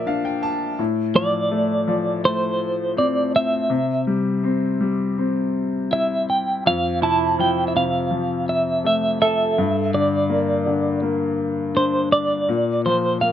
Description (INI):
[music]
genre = acoustic folk-pop ballad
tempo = 82 BPM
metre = 4/4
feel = straight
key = F major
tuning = A4 = 440 Hz
[part]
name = bright baby grand piano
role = accompaniment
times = 0.0-13.3 s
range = F2 to A5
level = -22 LUFS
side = left 3 dB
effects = none
[part]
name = clean electric guitar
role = melody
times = 1.2-13.3 s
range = C5 to A5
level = -20 LUFS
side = right 2 dB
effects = tremolo
[part]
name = electric guitar through a small old amp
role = arpeggios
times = 7.0-9.9 s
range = E4 to A4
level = -23 LUFS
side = right 7 dB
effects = tremolo
[sound]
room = light reverb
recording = close, detailed microphones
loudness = -18 LUFS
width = side -10 dB against mid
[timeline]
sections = 0.0-13.3 A section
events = none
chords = 0.0 Bb; 0.8 F/A; 3.7 C; 6.6 F; 9.6 Gm; 12.5 Bb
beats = 0.07 | 0.79 1.51 2.24 2.97 | 3.70 4.43 5.17 5.91 | 6.65 7.39 8.12 8.85 | 9.58 10.31 11.03 11.76 | 12.48 13.21